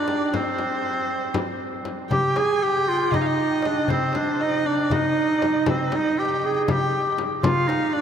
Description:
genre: Turkish makam ensemble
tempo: 236 BPM (eighths)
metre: 7/8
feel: straight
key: C makam nihavent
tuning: A4 = 440 Hz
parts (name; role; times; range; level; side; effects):
- clear clarinet; melody; 0.0-8.0 s; C4 to Ab4; -22 LUFS; right 1 dB; none
- clear erhu; second line; 0.0-8.0 s; C5 to Ab5; -28 LUFS; right 3 dB; none
- frame drum; percussion; 0.1-7.8 s; none; -30 LUFS; left 3 dB; none
- darbuka; percussion; 2.1-7.8 s; none; -29 LUFS; left 2 dB; none
room: wet cathedral reverb, RT60 6.8 s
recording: in a vast, echoing space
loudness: -20 LUFS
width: side -8 dB against mid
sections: 0.0-2.1 A section; 2.1-8.0 A section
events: none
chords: none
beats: 0.08 | 0.34 0.59 0.84 1.10 1.35 1.61 1.86 | 2.12 2.37 2.62 2.88 3.13 3.38 3.64 | 3.89 4.14 4.40 4.65 4.91 5.16 5.41 | 5.67 5.92 6.17 6.43 6.68 6.93 7.19 | 7.44 7.69 7.95

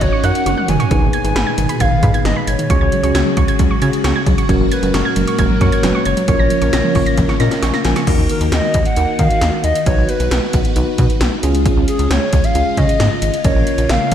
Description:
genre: synth-pop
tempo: 134 BPM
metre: 4/4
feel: straight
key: Eb minor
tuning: A4 = 439 Hz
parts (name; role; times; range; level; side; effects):
- hollow clarinet-like synth lead; melody; 0.0-14.1 s; Ab4 to Ab5; -20 LUFS; equal; chorus, tape echo
- mellow tine electric piano; accompaniment; 0.0-14.1 s; Db4 to Ab5; -22 LUFS; left 1 dB; medium stereo tremolo
- string machine, violins; sustained chords; 0.0-14.1 s; Bb2 to Ab4; -22 LUFS; equal; phaser, ensemble chorus
- soft round pluck; arpeggios; 0.0-8.0 s; Eb3 to Bb6; -21 LUFS; right 3 dB; chorus, tape echo
- rubbery square bass; bass; 0.0-14.1 s; Gb1 to Eb3; -19 LUFS; equal; none
- 80s electronic pad drums; drums; 0.0-14.1 s; crash cymbal, hi-hat, kick drum, snare drum, toms; -18 LUFS; equal; gated reverb on snare and toms
room: moderate scoring stage reverb, RT60 2.0 s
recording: none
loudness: -13 LUFS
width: side -9 dB against mid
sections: 0.0-8.1 A section; 8.1-14.1 B section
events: drum fill 0.5-0.9, 7.2-8.1; tine electric piano fill 7.2-8.1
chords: 0.0 Ebm7/Gb; 0.9 Abmadd9; 2.7 Dbsus4; 4.5 Gbadd9; 6.3 Bbm; 8.1 Ebm; 9.9 B; 11.4 Db; 13.4 Bbm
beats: 0.01 0.46 | 0.91 1.36 1.80 2.25 | 2.70 3.15 3.60 4.04 | 4.49 4.94 5.39 5.83 | 6.28 6.73 7.18 7.63 | 8.07 8.52 8.97 9.42 | 9.87 10.31 10.76 11.21 | 11.66 12.10 12.55 13.00 | 13.45 13.89

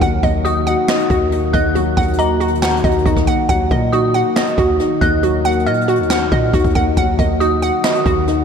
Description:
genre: hip hop, trap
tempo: 138 BPM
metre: 4/4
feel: half-time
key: Eb minor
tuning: A4 = 440 Hz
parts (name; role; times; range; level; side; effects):
- dark grand piano; accompaniment; 0.0-8.4 s; Gb3 to Gb4; -20 LUFS; left 6 dB; none
- dark analog pad; sustained chords; 0.0-8.4 s; Eb3 to Gb4; -22 LUFS; equal; chorus, phaser
- hollow square pluck; arpeggios; 0.0-8.4 s; Gb4 to Gb5; -19 LUFS; right 4 dB; chorus, ping-pong delay
- hard-hitting 808-style bass; bass; 0.0-8.4 s; Eb2 to Bb2; -20 LUFS; equal; none
- jazz brush drum kit; drums; 0.0-8.4 s; handclaps, hi-hat, kick drum, rim click, snare drum; -20 LUFS; equal; none
- dark detuned synth bell; second line; 0.4-8.4 s; Bb5 to Gb6; -24 LUFS; left 2 dB; chorus, ping-pong delay
room: moderate huge ambient reverb, RT60 4.8 s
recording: dreamy mix soaked in reverb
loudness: -13 LUFS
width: side -6 dB against mid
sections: 0.0-8.4 A section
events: none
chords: 0.0 Ebm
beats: | 0.01 0.45 0.88 1.32 | 1.75 2.19 2.62 3.06 | 3.49 3.93 4.36 4.80 | 5.23 5.67 6.10 6.54 | 6.97 7.41 7.84 8.27

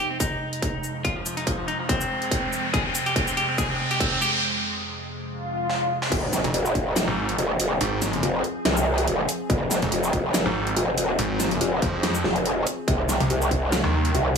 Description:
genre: heavy wobble dubstep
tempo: 142 BPM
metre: 4/4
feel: swing 54% on 16ths, half-time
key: F minor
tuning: A4 = 440 Hz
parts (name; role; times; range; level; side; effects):
- clean electric guitar; melody; 0.0-4.4 s; F3 to Ab4; -27 LUFS; left 1 dB; dub echo
- evolving wavetable pad; sustained chords; 0.0-14.4 s; F2 to Ab4; -32 LUFS; equal; chorus, built-in reverb, phaser, sidechain pumping
- riser, swell and impact; sound effects; 0.1-7.8 s; none; -28 LUFS; equal; none
- dubstep drum kit; drums; 0.2-14.4 s; crash cymbal, hi-hat, shaker, snare drum, toms; -27 LUFS; equal; overdrive, high-pass filter on hats, high-pass filter on snare, high-pass filter on perc, high-pass filter on toms, high-pass filter on cymbals, high-pass filter on room
- electronic kick drum; drums; 0.2-6.8, 9.5-13.6 s; none; -27 LUFS; equal; distortion
- growl bass; bass; 6.1-14.4 s; F1 to C2; -23 LUFS; equal; chorus, overdrive
- snarling distorted saw bass; bass; 6.4-14.1 s; F1 to F2; -24 LUFS; equal; distortion, overdrive
room: light reverb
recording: small room ambience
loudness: -21 LUFS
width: side -6 dB against mid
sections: 0.0-6.1 A section; 6.1-14.4 B section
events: build-up 0.0-6.1; riser 0.1-4.4; drum fill 2.7-4.4, 5.7-6.1; break 4.4-6.1; swell 5.4-6.1; drop 6.1-14.4; impact 6.1-7.8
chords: 0.0 Fm; 12.9 Cm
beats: 0.20 0.62 | 1.05 1.47 1.89 2.31 | 2.74 3.16 3.58 4.00 | 4.43 4.85 5.27 5.70 | 6.12 6.54 6.96 7.38 | 7.81 8.23 8.65 9.07 | 9.50 9.92 10.34 10.77 | 11.19 11.61 12.03 12.46 | 12.88 13.30 13.72 14.14

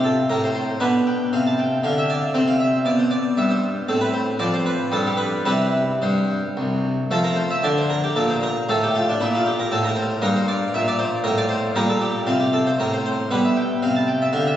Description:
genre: classical, baroque-style suite movement for harpsichord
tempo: 116 BPM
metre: 3/4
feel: rubato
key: C major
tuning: A4 = 440 Hz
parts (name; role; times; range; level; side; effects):
- harpsichord; solo; 0.0-14.6 s; C2 to A5; -18 LUFS; equal; none
room: wet concert hall reverb, RT60 2.6 s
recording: recorded on a phone in the room, club reverb, nothing above 7.9 kHz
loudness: -18 LUFS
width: side -11 dB against mid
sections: 0.0-7.1 A section; 7.1-14.6 A section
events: none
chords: 0.0 Bbmaj9; 0.8 Am11/B; 2.3 C5; 3.9 Am; 4.4 F5; 4.9 N.C.; 5.5 C; 7.1 F; 8.7 Bbmaj13/A; 10.2 Gm; 11.8 Gm/Bb; 13.3 G/B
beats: 0.30 | 0.81 1.33 1.83 | 2.34 2.85 3.37 | 3.88 4.39 4.92 | 5.46 6.01 6.56 | 7.10 7.63 8.16 | 8.69 9.21 9.72 | 10.24 10.76 11.27 | 11.78 12.29 12.80 | 13.31 13.82 14.34

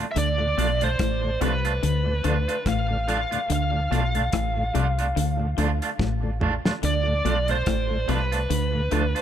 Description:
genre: roots reggae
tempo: 72 BPM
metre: 4/4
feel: swing 57% on 16ths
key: D dorian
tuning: A4 = 440 Hz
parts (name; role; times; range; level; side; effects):
- electric guitar at the edge of break-up; accompaniment; 0.0-9.2 s; A3 to F4; -31 LUFS; right 6 dB; tape echo
- tonewheel organ; accompaniment; 0.0-9.0 s; D2 to D4; -34 LUFS; left 2 dB; chorus vibrato, tape echo
- biting lead guitar; melody; 0.1-9.2 s; B4 to F5; -27 LUFS; equal; overdrive, tape echo
- electric guitar at the edge of break-up; riff; 0.2-9.1 s; A2 to D3; -31 LUFS; left 8 dB; none
- deep dub fingered electric bass; bass; 0.2-9.1 s; A1 to D2; -25 LUFS; right 1 dB; none
- damped 70s drum kit; drums; 0.2-9.2 s; hi-hat, kick drum, rim click, snare drum, toms; -30 LUFS; equal; none
room: light reverb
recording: none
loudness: -21 LUFS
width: side -10 dB against mid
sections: 0.0-9.2 A section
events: drum fill 6.0-6.8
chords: 0.0 Dm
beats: | 0.16 0.99 1.83 2.66 | 3.50 4.33 5.17 6.00 | 6.83 7.67 8.50

